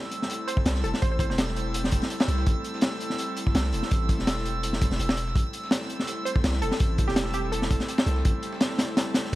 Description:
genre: drum and bass, jungle.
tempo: 166 BPM.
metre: 4/4.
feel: swing 54% on 16ths.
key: A minor.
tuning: A4 = 442 Hz.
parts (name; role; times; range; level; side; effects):
airy breathy pad; sustained chords; 0.0-9.4 s; G3 to A4; -33 LUFS; equal; chorus.
crunchy breakbeat drum kit; drums; 0.0-9.3 s; hi-hat, kick drum, snare drum; -25 LUFS; equal; none.
drifting glass-harmonics texture; texture; 0.0-9.4 s; E6; -37 LUFS; right 2 dB; chorus, built-in reverb.
dusty soul sampler-style drum kit; drums; 0.1-9.4 s; hi-hat, snare drum; -41 LUFS; left 1 dB; none.
glassy wavetable pluck; melody; 0.5-1.4, 6.3-8.0 s; G4 to C5; -34 LUFS; right 2 dB; chorus, dub echo.
long sustained 808-style bass; bass; 0.7-9.4 s; E1 to C2; -28 LUFS; equal; none.
room: studio reverb.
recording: vinyl crackle.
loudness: -23 LUFS.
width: side -16 dB against mid.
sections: 0.0-9.4 A section.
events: none.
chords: 0.0 Am7.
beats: 0.30 0.66 | 1.02 1.38 1.74 2.10 | 2.46 2.83 3.19 3.55 | 3.91 4.27 4.63 4.99 | 5.36 5.72 6.08 6.44 | 6.80 7.16 7.52 7.89 | 8.25 8.61 8.97 9.33.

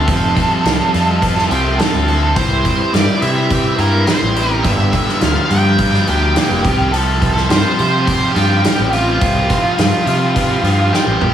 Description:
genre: indie rock.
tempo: 105 BPM.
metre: 4/4.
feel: straight.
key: unclear.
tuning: A4 = 440 Hz.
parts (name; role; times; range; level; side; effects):
octave-fuzz lead guitar; melody; 0.0-11.3 s; F4 to G5; -18 LUFS; right 2 dB; distortion, digital delay.
cranked stack guitar; riff; 0.0-11.3 s; G2 to A4; -21 LUFS; right 6 dB; overdrive, wide subtle chorus, digital delay.
overdriven electric guitar; riff; 0.0-11.3 s; F2 to G4; -21 LUFS; left 6 dB; none.
fuzz fingered electric bass; bass; 0.0-11.3 s; F1 to C3; -17 LUFS; equal; overdrive.
loose indie drum kit; drums; 0.1-11.3 s; hi-hat, kick drum, snare drum, toms; -19 LUFS; equal; none.
room: studio reverb.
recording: small room ambience.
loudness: -12 LUFS.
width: side -10 dB against mid.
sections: 0.0-11.3 A section.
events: drum fill 10.9-11.3.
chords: 0.0 Fadd9; 2.4 C; 4.6 Gm7; 6.6 Csus4.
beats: | 0.08 0.65 1.22 1.79 | 2.36 2.93 3.50 4.07 | 4.64 5.21 5.78 6.35 | 6.92 7.49 8.06 8.64 | 9.21 9.78 10.35 10.93.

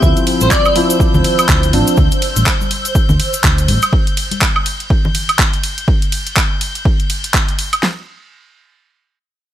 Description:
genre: deep house.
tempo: 123 BPM.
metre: 4/4.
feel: swing 59% on 16ths.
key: D minor.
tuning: A4 = 440 Hz.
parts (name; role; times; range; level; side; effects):
airy dreamy lead; melody; 0.0-0.7 s; C5 to D5; -19 LUFS; right 1 dB; chorus, tape echo.
hollow soft pad; sustained chords; 0.0-3.9 s; C5 to E6; -23 LUFS; right 3 dB; ensemble chorus, vintage 12-bit sampler grit, sidechain pumping.
felt-muted upright piano; stabs; 0.0-2.0 s; F3 to E4; -17 LUFS; left 2 dB; sidechain pumping, tape echo.
hollow-body short-scale fingered electric bass; bass; 0.0-3.8 s; A1 to D2; -15 LUFS; equal; tube saturation, sidechain pumping.
deep house drum kit; drums; 0.0-8.0 s; kick drum, snare drum; -15 LUFS; equal; studio reverb.
cabasa; percussion; 0.0-3.9 s; none; -25 LUFS; left 3 dB; none.
bright chamber violin section; texture; 0.0-7.8 s; G6; -24 LUFS; left 5 dB; none.
deep house drum kit; drums; 0.2-7.8 s; handclaps, hi-hat, ride cymbal, woodblock; -18 LUFS; right 1 dB; studio reverb.
congas; percussion; 0.4-5.1 s; none; -24 LUFS; left 3 dB; sidechain pumping on perc.
room: small room ambience.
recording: none.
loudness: -12 LUFS.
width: side -12 dB against mid.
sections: 0.0-7.8 A section; 7.8-9.5 B section.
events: drop 0.0-7.8.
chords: 0.0 Dm9; 3.9 N.C..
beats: | 0.03 0.51 1.00 1.49 | 1.98 2.46 2.95 3.44 | 3.93 4.42 4.90 5.39 | 5.88 6.37 6.85 7.34 | 7.83.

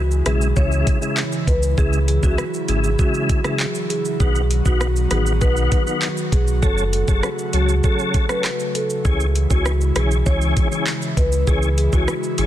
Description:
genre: dancehall.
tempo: 99 BPM.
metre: 4/4.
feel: straight.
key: C# minor.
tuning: A4 = 437 Hz.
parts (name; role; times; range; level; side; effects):
tonewheel organ; accompaniment; 0.0-12.5 s; C#3 to A4; -25 LUFS; left 2 dB; chorus vibrato, fast rotary speaker.
airy breathy pad; sustained chords; 0.0-12.5 s; C#3 to F#4; -27 LUFS; right 1 dB; chorus, sidechain pumping.
sub bass with octave; bass; 0.0-12.5 s; F#1 to C#2; -19 LUFS; equal; none.
island pop drum kit; drums; 0.1-12.5 s; handclaps, hi-hat, kick drum, rim click, shaker; -21 LUFS; equal; vintage 12-bit sampler grit.
marimba with medium mallets; melody; 0.3-12.5 s; F#4 to C#5; -25 LUFS; left 1 dB; ping-pong delay.
room: digital ambience.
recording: dense, heavily limited modern master.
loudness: -16 LUFS.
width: side -12 dB against mid.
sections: 0.0-12.5 A section.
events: none.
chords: 0.0 C#m; 4.2 B; 6.6 F#m; 9.1 C#m.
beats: 0.56 1.17 | 1.78 2.38 2.99 3.60 | 4.20 4.81 5.41 6.02 | 6.63 7.23 7.84 8.44 | 9.05 9.66 10.26 10.87 | 11.47 12.08.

